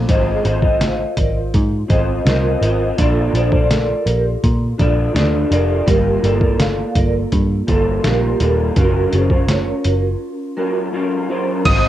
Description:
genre	indie pop, bedroom pop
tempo	83 BPM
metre	4/4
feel	straight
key	unclear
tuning	A4 = 442 Hz
part	electric guitar through a small old amp	accompaniment	0.0-11.9 s	Gb3 to Eb5	-20 LUFS	left 1 dB	ensemble chorus, warbly pitch drift
part	clear studio string section	sustained chords	0.0-0.1, 11.7-11.9 s	Ab3 to F4	-36 LUFS	left 3 dB	none
part	vintage muted picked electric bass	bass	0.0-11.9 s	Eb1 to Bb2	-18 LUFS	equal	none
part	vibraphone with medium mallets	second line	0.1-11.5 s	F4 to F5	-22 LUFS	right 3 dB	analog chorus, tape echo
part	trip hop sampler-style drum kit	drums	0.1-11.8 s	crash cymbal, hi-hat, kick drum, ride cymbal, snare drum	-18 LUFS	equal	overdrive, cassette tape
part	soft electric-piano-like synth keys	melody	11.7-11.9 s	Eb6	-16 LUFS	right 2 dB	ensemble chorus, cassette tape
room	light reverb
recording	home recording on cassette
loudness	-14 LUFS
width	side -12 dB against mid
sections	0.1-11.7 A section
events	break 10.2-11.7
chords	0.1 Ab6; 3.0 Bbmaj7; 5.9 Gm9; 8.8 Gbmaj7

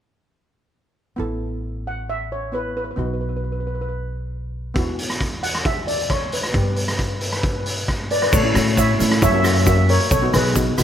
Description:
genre	calypso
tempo	134 BPM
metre	4/4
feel	straight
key	A major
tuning	A4 = 440 Hz
part	steel pan	accompaniment	1.2-10.8 s	A3 to B4	-24 LUFS	left 1 dB	none
part	upright bass	bass	1.2-10.8 s	A1 to A2	-23 LUFS	equal	none
part	steel pan	melody	1.9-10.8 s	G#4 to F#5	-24 LUFS	equal	none
part	raw garage drum kit	drums	4.8-10.8 s	crash cymbal, hi-hat, kick drum, rim click	-22 LUFS	equal	none
part	egg shaker	percussion	8.3-10.8 s	none	-30 LUFS	right 3 dB	none
room	light reverb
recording	close, detailed microphones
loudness	-18 LUFS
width	side -10 dB against mid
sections	1.2-8.3 A section; 8.3-10.8 B section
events	none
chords	1.2 Asus2; 3.0 B; 4.8 Esus2; 6.5 G; 8.3 A; 9.2 F#; 10.1 B7

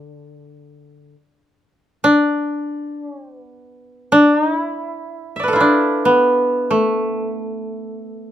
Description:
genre	japanese traditional, Japanese chamber music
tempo	free time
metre	none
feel	none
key	D kumoi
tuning	A4 = 441 Hz
part	koto	melody	0.0-8.3 s	A3 to E5	-15 LUFS	equal	none
part	koto	accompaniment	0.0-1.1 s	D3	-43 LUFS	left 5 dB	none
room	moderate studio reverb, RT60 0.5 s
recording	none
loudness	-15 LUFS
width	side -11 dB against mid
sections	0.0-8.3 A section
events	none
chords	none

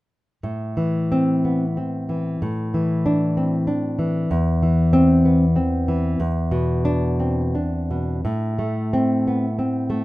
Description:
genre	romantic piece for solo classical guitar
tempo	82-97 BPM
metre	3/4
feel	rubato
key	A minor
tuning	A4 = 439 Hz
part	nylon-string guitar	solo	0.4-10.0 s	E2 to D4	-18 LUFS	equal	none
room	light reverb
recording	minimal, uncompressed stereo recording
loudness	-18 LUFS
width	side -18 dB against mid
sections	0.4-8.3 A section; 8.3-10.0 B section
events	none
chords	0.4 Am; 2.4 Amadd11; 4.3 Cmaj7/E; 6.2 E5; 8.3 Am

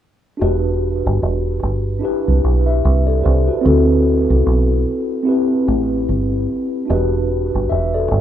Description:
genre	lovers rock reggae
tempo	74 BPM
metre	4/4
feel	swing 60% on 16ths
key	E minor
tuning	A4 = 440 Hz
part	mellow tine electric piano	accompaniment	0.4-8.2 s	C4 to E5	-18 LUFS	left 1 dB	medium stereo tremolo, tape echo
part	deep dub fingered electric bass	bass	0.4-8.2 s	E1 to D2	-16 LUFS	right 1 dB	none
room	little or no reverb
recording	rough home demo mix, small room ambience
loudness	-15 LUFS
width	side -10 dB against mid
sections	0.4-8.2 A section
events	none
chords	0.4 Em7; 2.0 Cmaj7; 3.6 D7; 5.3 Am7; 6.9 Em7

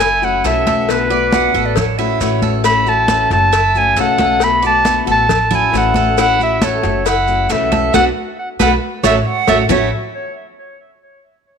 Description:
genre	latin, Cuban son and guajira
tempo	136 BPM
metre	4/4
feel	straight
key	A major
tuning	A4 = 439 Hz
part	clear clarinet	melody	0.0-9.9 s	B4 to B5	-15 LUFS	equal	tape echo
part	fingerpicked steel-string acoustic guitar	accompaniment	0.0-9.9 s	A2 to F#4	-21 LUFS	left 13 dB	none
part	Cuban tres	arpeggios	0.0-9.9 s	A3 to D5	-21 LUFS	right 10 dB	none
part	upright bass	bass	0.0-9.9 s	F#1 to B1	-21 LUFS	right 1 dB	none
part	congas	percussion	0.0-9.8 s	none	-21 LUFS	equal	none
part	cowbell and bongos	percussion	0.0-9.8 s	none	-23 LUFS	left 13 dB	none
part	maracas	percussion	0.0-9.8 s	none	-30 LUFS	right 14 dB	none
part	breathy bright jazz flute	second line	1.3-2.5, 9.0-9.9 s	C#5 to F#5	-20 LUFS	right 12 dB	none
room	moderate echo chamber reverb, RT60 1.7 s, studio ambience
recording	1960s-style stereo with parts hard left and right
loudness	-12 LUFS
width	side -6 dB against mid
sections	0.0-9.7 A section; 9.7-11.5 B section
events	band accent 7.9-9.7; drum fill 9.5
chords	0.0 F#m7; 0.9 Bm7; 1.8 A6; 3.5 F#m7; 4.4 Bm7; 5.3 A6; 7.1 F#m7; 7.9 Bm7; 8.8 A6; 9.7 A5

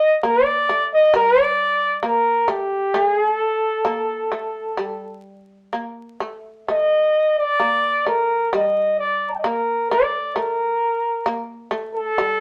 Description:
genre	japanese traditional, Japanese chamber music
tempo	66 BPM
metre	4/4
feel	rubato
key	unclear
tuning	A4 = 439 Hz
part	warm flugelhorn	melody	0.0-12.4 s	A4 to Bb5	-20 LUFS	equal	none
part	shamisen	second line	0.0-12.4 s	G3 to Bb3	-29 LUFS	equal	none
room	moderate studio reverb, RT60 0.6 s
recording	vinyl crackle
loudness	-20 LUFS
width	mono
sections	0.0-12.4 A section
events	none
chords	none

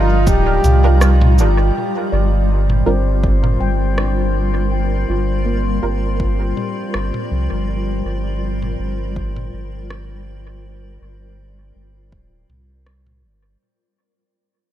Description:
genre	ambient dub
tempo	81 BPM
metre	4/4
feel	swing 54% on 16ths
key	G minor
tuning	A4 = 442 Hz
part	warm trombone	melody	0.0-1.4 s	F4 to G4	-22 LUFS	equal	tape echo
part	granular cloud pad	sustained chords	0.0-13.6 s	G3 to Bb5	-25 LUFS	left 2 dB	built-in reverb
part	handpan	arpeggios	0.0-9.2 s	F3 to G5	-27 LUFS	left 2 dB	low-pass filter, tape echo
part	filtered dub chord stab	stabs	0.0-6.1 s	G3 to Bb4	-26 LUFS	right 3 dB	ensemble chorus, dub echo
part	warm sub bass	bass	0.0-13.6 s	D1 to C2	-17 LUFS	equal	none
part	electronic kick drum	drums	0.3-12.3 s	none	-20 LUFS	equal	overdrive, small room ambience
part	organic electronic drum kit	drums	0.3-13.2 s	cabasa, rim click, toms	-25 LUFS	right 1 dB	small room ambience, dub echo
part	drifting glass-harmonics texture	texture	2.3-13.6 s	C4 to C5	-31 LUFS	left 4 dB	chorus, built-in reverb
room	little or no reverb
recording	none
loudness	-15 LUFS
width	side -12 dB against mid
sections	0.0-1.8 A section; 1.8-13.6 B section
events	fade-out 1.8-13.6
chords	0.0 Gm7

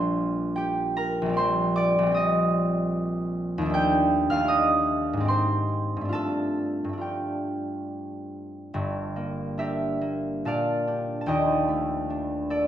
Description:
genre	classical, solo harp piece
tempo	66-80 BPM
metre	3/4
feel	rubato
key	G minor from 3.7 s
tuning	A4 = 440 Hz
part	concert harp	solo	0.0-12.7 s	Eb1 to G6	-23 LUFS	equal	none
room	wet recital hall reverb, RT60 1.4 s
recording	none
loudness	-23 LUFS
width	side -10 dB against mid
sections	0.0-8.7 A section; 8.7-12.7 B section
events	none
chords	0.0 Bb69; 1.4 Cm7/Bb; 3.7 Ebmaj7#11; 5.3 Abmaj7; 6.1 Gsus2; 8.7 Gm6; 10.4 Bb6; 11.3 Ebmaj7#11

